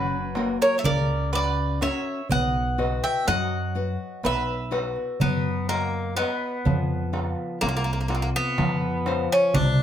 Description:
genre	greek folk, Greek bouzouki band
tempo	124 BPM (eighths)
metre	9/8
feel	straight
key	unclear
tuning	A4 = 440 Hz
part	Greek bouzouki	melody	0.0-9.8 s	A#3 to G5	-26 LUFS	equal	none
part	mandolin	second line	0.0-5.7 s	F#4 to E5	-31 LUFS	right 5 dB	none
part	nylon-string guitar	accompaniment	0.0-9.8 s	C3 to F#5	-29 LUFS	left 4 dB	none
part	upright bass	bass	0.0-9.8 s	F#1 to F#2	-28 LUFS	equal	none
part	darbuka	percussion	0.4-9.8 s	none	-29 LUFS	right 2 dB	none
room	moderate small room reverb, RT60 0.5 s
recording	none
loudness	-22 LUFS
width	side -10 dB against mid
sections	0.0-6.7 A section; 6.7-9.8 A section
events	none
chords	0.0 F#; 2.3 B; 6.7 F

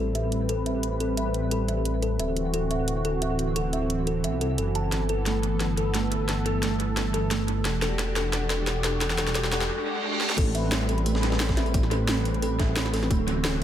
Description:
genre	liquid drum and bass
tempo	176 BPM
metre	4/4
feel	straight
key	A dorian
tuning	A4 = 441 Hz
part	warm analog pad	sustained chords	0.0-13.6 s	E3 to B4	-30 LUFS	right 1 dB	chorus, sidechain pumping
part	kalimba	arpeggios	0.0-13.6 s	A3 to A5	-30 LUFS	right 1 dB	low-pass filter, tape echo
part	dark detuned saw bass	bass	0.0-13.6 s	D1 to C2	-28 LUFS	equal	none
part	garage drum kit	drums	0.1-13.5 s	crash cymbal, hi-hat, snare drum	-30 LUFS	equal	overdrive, high-pass filter on hats, high-pass filter on snare, high-pass filter on cymbals, analog delay
part	riser and reverse cymbal	sound effects	8.3-10.4 s	none	-35 LUFS	right 2 dB	none
part	breakbeat sampler-style drum kit	drums	10.4-13.5 s	hi-hat, snare drum	-34 LUFS	equal	high-pass filter on hats, high-pass filter on snare, high-pass filter on room
part	electronic kick drum	drums	10.4-13.2 s	none	-25 LUFS	equal	overdrive
room	light reverb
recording	echo-heavy mix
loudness	-23 LUFS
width	side -10 dB against mid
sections	0.0-10.4 A section; 10.4-13.6 B section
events	build-up 0.0-10.4; drum fill 4.9-9.7, 10.2; riser 8.3-10.4; reverse cymbal 9.7-10.4; drop 10.4-13.6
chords	0.0 Am9; 2.2 D9; 4.9 G69; 7.7 Em9; 10.4 Am9; 13.1 D9

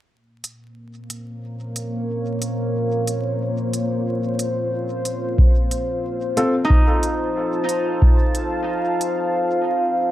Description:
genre	ambient dub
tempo	91 BPM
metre	4/4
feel	swing 59% on 16ths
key	Bb minor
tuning	A4 = 439 Hz
part	deep dark ambient pad	sustained chords	1.0-10.1 s	Bb3 to A5	-22 LUFS	equal	chorus, built-in reverb
part	electronic hi-hat	drums	0.4-9.2 s	none	-30 LUFS	right 1 dB	none
part	electronic kick drum	drums	5.4-8.2 s	none	-15 LUFS	equal	none
part	dark upright piano	stabs	6.4-6.5 s	C4 to A4	-24 LUFS	left 1 dB	dub echo
part	Celtic harp	arpeggios	6.6-9.3 s	Eb4	-26 LUFS	right 1 dB	tape echo
room	moderate spring reverb, RT60 2.8 s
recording	vinyl crackle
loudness	-18 LUFS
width	side -13 dB against mid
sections	0.1-10.1 A section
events	none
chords	0.1 Bbm; 5.4 F

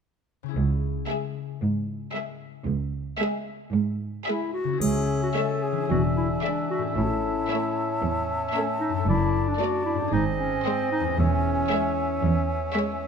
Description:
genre	cinematic, playful, whimsical film cue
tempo	114 BPM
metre	4/4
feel	straight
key	C# minor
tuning	A4 = 440 Hz
part	concert harp	arpeggios	0.4-13.1 s	E2 to A4	-31 LUFS	left 13 dB	none
part	clear studio double bass section	bass	0.5-11.6 s	E1 to C#2	-29 LUFS	right 3 dB	none
part	warm studio cello section	bass	0.5-12.6 s	C#2 to A2	-27 LUFS	right 3 dB	none
part	clear studio violin section	melody	1.1-13.1 s	D5 to E5	-34 LUFS	left 2 dB	none
part	clear studio violin section	second line	1.1-13.1 s	G#4 to D5	-36 LUFS	left 2 dB	none
part	rich studio viola section	accompaniment	1.1-13.1 s	G#3 to A3	-33 LUFS	right 2 dB	none
part	warm clarinet	second line	4.3-12.5 s	B#3 to A4	-29 LUFS	left 2 dB	none
part	mellow hollow concert flute	second line	4.8-13.1 s	G#5 to A5	-34 LUFS	left 3 dB	none
part	warm oboe	second line	4.8-13.1 s	D5 to E5	-33 LUFS	equal	none
part	clear bassoon	accompaniment	4.8-13.1 s	B#3 to D4	-31 LUFS	right 8 dB	none
part	triangle	percussion	4.8-5.9 s	none	-36 LUFS	left 5 dB	none
room	light reverb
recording	none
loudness	-23 LUFS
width	side -6 dB against mid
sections	0.5-4.8 A section; 4.8-13.1 B section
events	none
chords	0.5 C#m; 5.9 E7; 7.0 A; 9.1 D/F#; 10.1 G#; 11.2 C#m/E

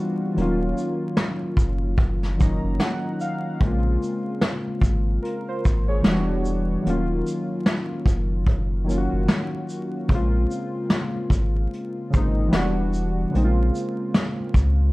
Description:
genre	lo-fi hip hop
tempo	74 BPM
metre	4/4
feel	swing 59% on 16ths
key	Bb minor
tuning	A4 = 442 Hz
part	warbly lo-fi synth keys	accompaniment	0.0-14.9 s	C3 to Bb5	-25 LUFS	equal	chorus, cassette tape
part	warm sub bass	bass	0.4-14.9 s	Eb1 to Db2	-23 LUFS	equal	none
part	vintage brush drum kit	drums	0.4-14.8 s	hi-hat, kick drum, shaker, snare drum	-21 LUFS	equal	vintage 12-bit sampler grit
room	light reverb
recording	dark, warm production, vinyl crackle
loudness	-20 LUFS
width	side -20 dB against mid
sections	0.0-14.9 A section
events	break 0.0-0.4; synth keys fill 2.0-3.6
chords	0.4 Ebm7; 3.6 Bbm9; 6.0 Em7; 6.9 Ebm7; 10.1 Bbm9; 12.5 Em7; 13.3 Bbm7

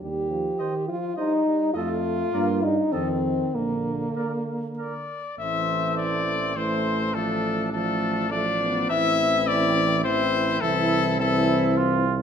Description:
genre	classical, brass quintet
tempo	103 BPM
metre	3/4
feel	rubato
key	Bb major, A minor from 5.4 s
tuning	A4 = 440 Hz
part	mellow trombone	accompaniment	0.0-12.1 s	D3 to Bb3	-30 LUFS	right 4 dB	none
part	warm French horn	accompaniment	0.0-12.1 s	A3 to G4	-26 LUFS	left 2 dB	none
part	mellow tuba	bass	0.0-12.2 s	A1 to G2	-29 LUFS	right 4 dB	none
part	clear cornet	melody	0.6-11.8 s	A4 to E5	-25 LUFS	left 6 dB	none
part	mellow trumpet	second line	0.6-12.1 s	C4 to C5	-30 LUFS	right 4 dB	none
room	wet stone room reverb, RT60 1.1 s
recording	none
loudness	-21 LUFS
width	side -8 dB against mid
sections	0.0-5.4 A section; 5.4-12.2 B section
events	none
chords	0.0 Cm/Eb (rootless); 1.7 F7; 2.3 Gm; 2.9 F7; 3.5 Bb; 5.4 Am; 7.1 Dm/A; 8.9 Am; 10.6 Am/C

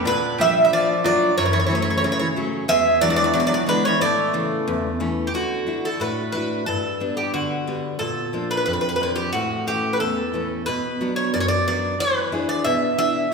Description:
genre	greek folk, Greek bouzouki band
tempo	90 BPM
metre	2/4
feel	straight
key	D major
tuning	A4 = 440 Hz
part	Greek bouzouki	melody	0.0-13.3 s	F#4 to E5	-21 LUFS	right 1 dB	none
part	Greek bouzouki	second line	0.0-5.0 s	D3 to A3	-27 LUFS	right 2 dB	none
part	picked steel-string acoustic guitar	accompaniment	0.0-13.3 s	E2 to G#4	-24 LUFS	left 1 dB	none
room	wet scoring stage reverb, RT60 1.8 s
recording	recorded in a church or concert hall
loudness	-19 LUFS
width	side -4 dB against mid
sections	0.0-5.4 A section; 5.4-13.3 B section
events	none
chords	0.1 Bb; 1.4 F#m; 2.7 E7; 4.0 A; 5.4 Dadd9; 6.7 G; 8.0 Bb; 9.3 A; 10.7 Bm; 12.0 E7

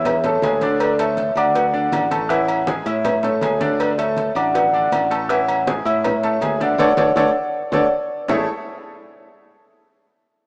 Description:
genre	latin, salsa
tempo	160 BPM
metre	4/4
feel	straight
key	A major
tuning	A4 = 440 Hz
part	vibraphone with soft mallets	melody	0.0-8.5 s	A4 to A5	-22 LUFS	equal	none
part	bright upright piano	accompaniment	0.0-8.5 s	D3 to E6	-25 LUFS	equal	none
part	modern bright fingered electric bass	bass	0.0-8.5 s	A1 to A2	-30 LUFS	equal	none
part	agogo bells and timbales	percussion	0.1-8.4 s	none	-31 LUFS	equal	none
part	congas	percussion	0.1-8.4 s	none	-31 LUFS	equal	none
part	cowbell and bongos	percussion	0.1-8.4 s	none	-29 LUFS	equal	none
room	wet lush hall reverb, RT60 2.3 s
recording	rough home demo mix, small speaker sound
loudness	-19 LUFS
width	mono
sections	0.0-8.3 A section; 8.3-9.8 B section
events	band accent 6.8-8.3; drum fill 7.4-8.3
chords	0.0 Amaj7; 0.8 Dmaj7; 2.3 Amaj7; 3.8 Dmaj7; 5.3 Amaj7; 6.8 Dmaj7; 8.3 Amaj7

